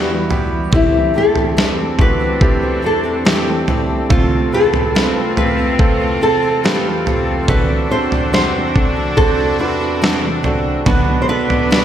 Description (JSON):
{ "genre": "pop ballad", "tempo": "71 BPM", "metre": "4/4", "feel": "straight", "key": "unclear", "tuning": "A4 = 440 Hz", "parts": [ { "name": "nylon-string guitar", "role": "melody", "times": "0.0-11.8 s", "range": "E4 to C5", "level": "-18 LUFS", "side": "left 1 dB", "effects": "slapback echo" }, { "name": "warm symphonic cello section", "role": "second line", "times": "0.0-11.8 s", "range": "B3 to D4", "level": "-24 LUFS", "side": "left 1 dB", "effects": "none" }, { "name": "warm grand piano", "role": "accompaniment", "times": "0.0-11.8 s", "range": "B1 to F5", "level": "-20 LUFS", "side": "right 3 dB", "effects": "slapback echo" }, { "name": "sweeping resonant pad", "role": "sustained chords", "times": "0.0-11.8 s", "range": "E2 to B4", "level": "-25 LUFS", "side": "equal", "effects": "chorus" }, { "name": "picked steel-string acoustic guitar", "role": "arpeggios", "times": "0.0-11.8 s", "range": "B2 to B4", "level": "-26 LUFS", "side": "left 3 dB", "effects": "slapback echo, digital delay" }, { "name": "dusty soul sampler-style drum kit", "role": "drums", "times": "0.3-11.8 s", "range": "kick drum, snare drum, toms", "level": "-16 LUFS", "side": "equal", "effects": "none" } ], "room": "moderate concert hall reverb, RT60 2.0 s", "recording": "big arena sound", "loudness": "-13 LUFS", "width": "side -10 dB against mid", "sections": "0.0-11.8 A section", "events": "none", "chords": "0.0 Em; 0.7 C6/E; 4.1 F/E; 7.5 D7/E; 10.9 Bm", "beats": "| 0.73 1.57 2.42 3.26 | 4.11 4.95 5.80 6.64 | 7.49 8.33 9.18 10.02 | 10.87 11.71" }